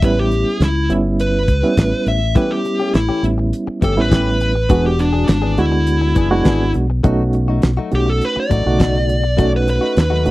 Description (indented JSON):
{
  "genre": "straight-eighth soul blues",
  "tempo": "103 BPM",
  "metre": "4/4",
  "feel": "straight",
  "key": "unclear",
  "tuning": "A4 = 440 Hz",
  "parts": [
    { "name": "smooth overdriven lead guitar", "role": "melody", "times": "0.0-10.3 s", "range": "D4 to E5", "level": "-20 LUFS", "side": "equal", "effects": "none" },
    { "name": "bright reed electric piano", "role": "accompaniment", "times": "0.0-10.3 s", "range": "C#3 to F#4", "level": "-19 LUFS", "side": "right 2 dB", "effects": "fast tremolo" },
    { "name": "fingered electric bass", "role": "bass", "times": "0.0-10.3 s", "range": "E1 to D#2", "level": "-18 LUFS", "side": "equal", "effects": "none" },
    { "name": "damped 70s drum kit", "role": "drums", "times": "0.0-10.3 s", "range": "hi-hat, kick drum, snare drum", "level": "-15 LUFS", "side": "equal", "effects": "none" },
    { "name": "direct-recorded clean electric guitar", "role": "stabs", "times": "2.4-10.3 s", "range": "E3 to G#4", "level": "-24 LUFS", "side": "left 6 dB", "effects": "none" }
  ],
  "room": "little or no reverb",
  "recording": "dry, close 1970s-style studio recording",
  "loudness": "-14 LUFS",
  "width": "side -18 dB against mid",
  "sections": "0.0-10.3 A section",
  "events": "lead electric guitar solo 0.0-10.3",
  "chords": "0.0 A7; 4.7 E7; 7.0 B7",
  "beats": "| 0.03 0.61 1.20 1.78 | 2.37 2.95 3.54 4.12 | 4.71 5.29 5.88 6.46 | 7.05 7.63 8.21 8.80 | 9.38 9.97"
}